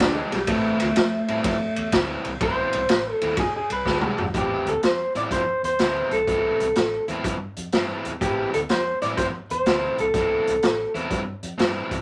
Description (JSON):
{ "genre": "electric blues shuffle", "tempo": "124 BPM", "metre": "4/4", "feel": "swing 67% on 8ths", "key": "A minor", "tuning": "A4 = 440 Hz", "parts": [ { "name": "electric guitar through a small old amp", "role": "melody", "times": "0.0-10.9 s", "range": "G3 to D5", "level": "-26 LUFS", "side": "equal", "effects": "none" }, { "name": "overdriven semi-hollow guitar", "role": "riff", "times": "0.0-12.0 s", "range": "A2 to G4", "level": "-30 LUFS", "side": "equal", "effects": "none" }, { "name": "vintage muted fingered electric bass", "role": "bass", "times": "0.0-12.0 s", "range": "E1 to A2", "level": "-38 LUFS", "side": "equal", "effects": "none" }, { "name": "raw garage drum kit", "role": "drums", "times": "0.0-12.0 s", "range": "hi-hat, kick drum, ride cymbal, snare drum, toms", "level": "-27 LUFS", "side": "equal", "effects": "none" } ], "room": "moderate small room ambience, RT60 0.5 s", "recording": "none", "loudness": "-23 LUFS", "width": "mono", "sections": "0.0-4.3 A section; 4.3-12.0 B section", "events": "clean electric guitar solo 0.0-4.3; drum fill 3.9-4.3", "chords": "0.5 Am; 3.4 E7#9; 4.3 Am" }